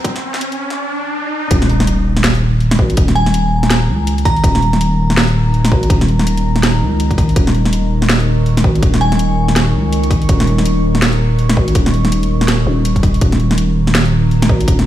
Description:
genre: half-time drum and bass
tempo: 164 BPM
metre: 4/4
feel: swing 60% on 16ths, half-time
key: unclear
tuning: A4 = 438 Hz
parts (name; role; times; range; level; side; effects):
- deep dark ambient pad; sustained chords; 2.6-14.9 s; Eb3 to Db6; -20 LUFS; right 1 dB; chorus, built-in reverb, sidechain pumping
- drum and bass drum kit; drums; 0.0-14.8 s; hi-hat, snare drum; -18 LUFS; equal; overdrive, high-pass filter on hats, small room ambience, high-pass filter on snare
- electronic kick drum; drums; 0.0-14.8 s; none; -14 LUFS; equal; overdrive, small room ambience
- riser and impact; sound effects; 0.0-3.0 s; none; -20 LUFS; equal; none
- growling 808-style bass; bass; 1.5-14.9 s; Eb1 to Db2; -14 LUFS; equal; none
- glassy synth bell; melody; 3.2-4.6, 9.0-9.2 s; Ab5 to Bb5; -21 LUFS; equal; chorus, vintage 12-bit sampler grit, ping-pong delay
room: digital ambience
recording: played on a big sound system in a bare room, large studio reverb, high-pass filter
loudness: -11 LUFS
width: side -12 dB against mid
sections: 0.0-1.5 A section; 1.5-14.9 B section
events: build-up 0.0-1.5; riser 0.0-1.5; drop 1.5-14.9; impact 1.5-3.0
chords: 0.0 Eb5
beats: | 0.04 0.41 0.78 1.14 | 1.51 1.87 2.24 2.61 | 2.97 3.34 3.70 4.07 | 4.43 4.80 5.17 5.53 | 5.90 6.26 6.63 7.00 | 7.36 7.73 8.09 8.46 | 8.83 9.19 9.56 9.92 | 10.29 10.65 11.02 11.39 | 11.75 12.12 12.48 12.85 | 13.22 13.58 13.95 14.31 | 14.68

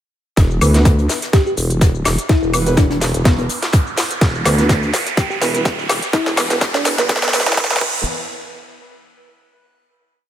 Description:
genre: bass house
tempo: 125 BPM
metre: 4/4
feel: swing 54% on 16ths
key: E minor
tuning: A4 = 436 Hz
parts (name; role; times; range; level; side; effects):
- vowel-sweep wobble bass; bass; 0.4-8.0 s; E1 to D2; -18 LUFS; equal; chorus, overdrive, sidechain pumping
- electronic kick drum; drums; 0.4-7.9 s; none; -15 LUFS; equal; none
- garage drum kit; drums; 0.4-7.9 s; crash cymbal, hi-hat, shaker, snare drum, woodblock; -19 LUFS; left 1 dB; high-pass filter on snare, high-pass filter on hats, high-pass filter on perc, high-pass filter on cymbals, high-pass filter on room
- soft brush drum kit; drums; 0.4-7.7 s; hi-hat, snare drum; -30 LUFS; left 2 dB; none
- riser; sound effects; 2.0-8.1 s; none; -25 LUFS; right 5 dB; none
- warm baby grand piano; stabs; 0.6-8.0 s; E3 to B4; -24 LUFS; right 3 dB; vintage 12-bit sampler grit, sidechain pumping, low-pass filter, ping-pong delay
- bell-like FM electric piano; melody; 1.3-7.3 s; B3 to G4; -23 LUFS; left 2 dB; chorus, phaser, ping-pong delay
room: light reverb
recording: high-pass filter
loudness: -14 LUFS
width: side -11 dB against mid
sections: 0.4-8.1 build; 8.1-10.0 final hit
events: build-up 0.4-8.1; drum fill 0.4-8.1; filter sweep on grand piano 0.4-8.1; filter sweep 0.4-8.1; riser 2.0-8.1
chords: 0.4 E5; 8.1 N.C.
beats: | 0.37 0.85 1.33 1.81 | 2.29 2.77 3.25 3.73 | 4.21 4.69 5.17 5.65 | 6.13 6.61 7.09 7.57 | 8.05

